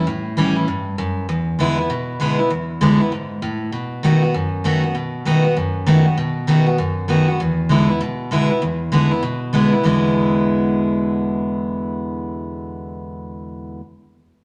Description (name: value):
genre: rock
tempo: 196 BPM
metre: 4/4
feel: swing 63% on 8ths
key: E mixolydian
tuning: A4 = 439 Hz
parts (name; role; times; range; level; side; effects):
- picked steel-string acoustic guitar; solo; 0.0-13.8 s; E2 to F#4; -19 LUFS; equal; none
room: wet large studio reverb, RT60 1.5 s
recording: none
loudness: -19 LUFS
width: mono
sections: 0.0-8.6 A section; 8.6-9.8 B section; 9.8-12.3 C section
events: none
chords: 0.0 A7; 1.3 E7; 3.7 B7; 7.4 E7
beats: | 0.06 0.37 0.67 0.98 | 1.28 1.59 1.90 2.20 | 2.51 2.81 3.12 3.42 | 3.73 4.03 4.34 4.64 | 4.95 5.26 5.56 5.87 | 6.17 6.48 6.78 7.09 | 7.39 7.70 8.01 8.31 | 8.62 8.93 9.23 9.54 | 9.85 10.15 10.46 10.77 | 11.07 11.38 11.69 11.99